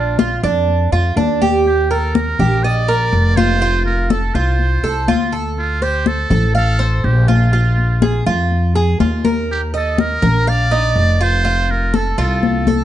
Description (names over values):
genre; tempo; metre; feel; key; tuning
latin, Cuban son and guajira; 123 BPM; 4/4; straight; Bb major; A4 = 440 Hz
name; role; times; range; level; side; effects
trumpet with metal mute; melody; 0.0-12.8 s; F4 to D5; -21 LUFS; right 2 dB; none
Cuban tres; arpeggios; 0.0-12.8 s; D4 to F5; -19 LUFS; right 3 dB; none
upright bass; bass; 0.0-12.8 s; F1 to F2; -16 LUFS; equal; none
congas; percussion; 0.2-12.8 s; none; -19 LUFS; left 5 dB; none
room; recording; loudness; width
light reverb; dark, warm production, nothing above 10.5 kHz; -13 LUFS; side -12 dB against mid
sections
0.0-12.8 A section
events
drum fill 12.4-12.8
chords
0.0 Bb; 1.7 Eb; 3.6 F; 5.6 Dm7; 7.5 Bb5; 9.5 Ebsus2; 11.4 F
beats
0.20 0.69 1.17 | 1.66 2.15 2.64 3.13 | 3.62 4.11 4.60 5.08 | 5.58 6.06 6.55 7.04 | 7.53 8.02 8.51 9.00 | 9.49 9.98 10.47 10.96 | 11.45 11.94 12.43